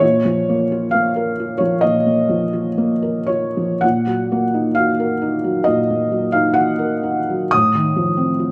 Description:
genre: classical, romantic nocturne for solo piano.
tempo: 54-73 BPM.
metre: 4/4.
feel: rubato.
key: Bb minor.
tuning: A4 = 439 Hz.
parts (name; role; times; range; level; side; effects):
felt-muted upright piano; solo; 0.0-8.5 s; A2 to Eb6; -18 LUFS; equal; none.
room: moderate recital hall reverb, RT60 1.6 s.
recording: close, detailed microphones.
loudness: -18 LUFS.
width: mono.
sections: 0.0-8.5 A section.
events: none.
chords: 0.0 Bbm; 3.8 Ebm/Bb; 7.5 F7/A.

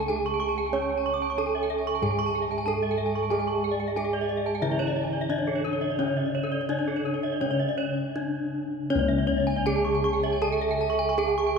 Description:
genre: gamelan.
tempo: 79-93 BPM.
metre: 4/4.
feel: straight.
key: C# pelog.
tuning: A4 = 440 Hz.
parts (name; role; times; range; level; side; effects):
gamelan-type bronze metallophone; melody; 0.0-11.6 s; C#4 to C#5; -28 LUFS; right 1 dB; none.
gamelan-type bronze metallophone; accompaniment; 0.0-8.9 s; C#3 to C#4; -37 LUFS; right 3 dB; none.
gamelan-type bronze metallophone; arpeggios; 0.0-11.5 s; A4-20c to D6+20c; -31 LUFS; left 2 dB; none.
gamelan-type bossed gongs; bass; 0.0-11.6 s; C#2 to C#5; -31 LUFS; left 2 dB; none.
gamelan-type bronze metallophone; arpeggios; 0.3-11.6 s; A4-20c to C#6; -32 LUFS; right 5 dB; none.
mellow hollow bansuri; second line; 10.2-11.6 s; C#5 to G#5-23c; -31 LUFS; right 5 dB; none.
room: wet church reverb, RT60 3.6 s.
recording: recorded in a church or concert hall.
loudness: -24 LUFS.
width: side -5 dB against mid.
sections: 0.0-8.9 A section; 8.9-11.6 B section.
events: break 7.8-8.9.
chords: none.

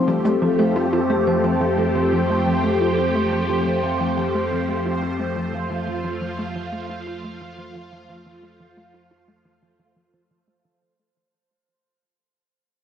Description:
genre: ambient, sequencer-driven space music.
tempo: 88 BPM.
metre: 4/4.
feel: straight.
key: unclear.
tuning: A4 = 440 Hz.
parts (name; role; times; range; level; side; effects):
phased string machine; sustained chords; 0.0-10.8 s; F3 to G4; -23 LUFS; equal; ensemble chorus, phaser, shimmer reverb.
vibraphone with soft mallets; arpeggios; 0.0-5.3 s; C4 to C5; -24 LUFS; left 5 dB; auto-pan, ping-pong delay, shimmer reverb.
tight sequencer bass; riff; 0.0-10.7 s; F3 to F4; -26 LUFS; equal; analog chorus, ping-pong delay, shimmer reverb.
warm sub bass; bass; 0.0-10.8 s; F2; -32 LUFS; right 1 dB; none.
bubbling stepped-filter texture; texture; 0.2-10.8 s; C5; -29 LUFS; right 4 dB; chorus, built-in reverb, shimmer reverb.
room: wet studio reverb, RT60 0.6 s.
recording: home recording on cassette.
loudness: -19 LUFS.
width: side -8 dB against mid.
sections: 0.0-10.8 A section.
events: fade-out on sub bass 0.0-10.8; fade-out 0.0-10.8; filter sweep on analog synth bass 0.0-10.8.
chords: 0.0 Fadd9.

